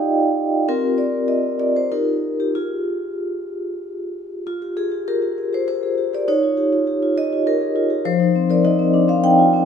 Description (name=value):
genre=classical, contemporary piece for solo vibraphone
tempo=93-102 BPM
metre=3/4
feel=rubato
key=F dorian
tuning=A4 = 440 Hz
part: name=vibraphone with medium mallets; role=solo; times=0.0-9.7 s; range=F3 to G5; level=-17 LUFS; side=left 1 dB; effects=none
room=wet stone room reverb, RT60 1.2 s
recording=none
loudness=-17 LUFS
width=side -7 dB against mid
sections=0.0-4.5 A section; 4.5-9.7 B section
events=none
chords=0.0 Ebadd9; 0.7 Csus4; 1.9 Ebadd9; 2.5 Fmadd9; 6.3 Eb9; 8.1 F7sus4